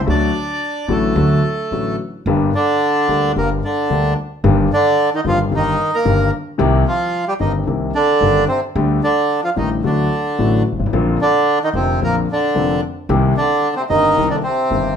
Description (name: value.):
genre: tango.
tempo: 111 BPM.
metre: 4/4.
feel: rubato.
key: G minor.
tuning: A4 = 440 Hz.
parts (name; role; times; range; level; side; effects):
warm concert grand piano; accompaniment; 0.0-14.9 s; F1 to G4; -18 LUFS; left 4 dB; none.
upright bass; bass; 0.0-14.9 s; F1 to D2; -21 LUFS; right 3 dB; none.
bandoneon; melody; 0.1-15.0 s; C3 to D5; -16 LUFS; right 1 dB; none.
room: moderate large studio reverb, RT60 0.9 s.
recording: minimal, uncompressed stereo recording.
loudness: -14 LUFS.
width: side -7 dB against mid.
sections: 0.0-2.3 A section; 2.3-15.0 B section.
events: none.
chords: 0.1 D; 2.3 Gm; 4.4 Eb/G; 6.6 Cm7; 8.8 Dsus4; 9.8 D; 10.9 Bbadd9; 13.1 Cm7.